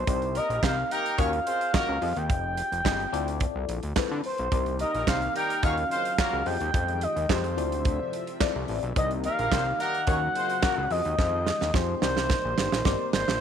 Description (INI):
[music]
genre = early-eighties boogie funk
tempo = 108 BPM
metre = 4/4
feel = straight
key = C minor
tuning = A4 = 439 Hz
[part]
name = expressive synth lead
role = melody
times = 0.0-13.4 s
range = C5 to G5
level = -28 LUFS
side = right 1 dB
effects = chorus, slapback echo
[part]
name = fat analog bass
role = bass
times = 0.0-13.4 s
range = F1 to D3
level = -31 LUFS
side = equal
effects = none
[part]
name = FM electric piano with auto-pan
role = accompaniment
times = 0.1-13.3 s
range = C4 to Gb5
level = -33 LUFS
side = left 13 dB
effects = phaser
[part]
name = modern studio drum kit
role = drums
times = 0.1-13.4 s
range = handclaps, hi-hat, kick drum, snare drum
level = -28 LUFS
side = right 2 dB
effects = none
[part]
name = mellow horn section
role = second line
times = 0.4-10.9 s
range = Bb3 to Db5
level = -32 LUFS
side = equal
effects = none
[part]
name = lush unison pad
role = sustained chords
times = 4.5-13.4 s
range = C3 to G5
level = -38 LUFS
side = equal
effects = chorus
[sound]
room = light reverb, small room ambience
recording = 1960s-style stereo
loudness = -24 LUFS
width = side -8 dB against mid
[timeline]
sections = 0.0-13.4 A section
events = drum fill 11.2-13.4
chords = 0.1 Cm9; 1.2 Ebm9; 2.0 Fm9; 3.1 Dm9; 4.5 Cm9; 5.6 Ebm9; 6.5 Fm9; 7.6 Dm9; 9.0 Cm9; 10.1 Ebm9; 10.9 Fm9; 12.0 Cm9